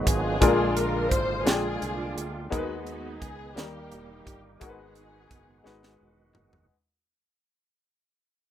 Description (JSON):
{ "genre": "slow gospel", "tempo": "57 BPM (dotted quarters)", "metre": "6/8", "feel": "straight", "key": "G# minor", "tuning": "A4 = 440 Hz", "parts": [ { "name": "clear grand piano", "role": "accompaniment", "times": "0.0-6.7 s", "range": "G#2 to G5", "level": "-28 LUFS", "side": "left 4 dB", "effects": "none" }, { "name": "bright tonewheel organ", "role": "sustained chords", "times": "0.0-6.7 s", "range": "D3 to G#4", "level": "-35 LUFS", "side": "right 5 dB", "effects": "chorus vibrato, fast rotary speaker" }, { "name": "fingered electric bass", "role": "bass", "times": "0.0-6.7 s", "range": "E1 to D#2", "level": "-36 LUFS", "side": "right 1 dB", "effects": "none" }, { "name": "warm studio string section", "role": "melody", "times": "0.1-6.0 s", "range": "A#3 to B#4", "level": "-32 LUFS", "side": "left 1 dB", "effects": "none" }, { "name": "tight funk drum kit", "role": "drums", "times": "0.1-6.7 s", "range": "hi-hat, kick drum, snare drum, toms", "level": "-26 LUFS", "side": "right 1 dB", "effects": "none" } ], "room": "light reverb", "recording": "rough home demo mix", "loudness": "-23 LUFS", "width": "side -11 dB against mid", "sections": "0.0-6.7 A section", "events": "fade-out 0.0-6.7; drum fill 5.7-6.7", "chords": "0.4 A#7; 2.5 G#m/D#; 3.6 D#; 4.6 G#m7" }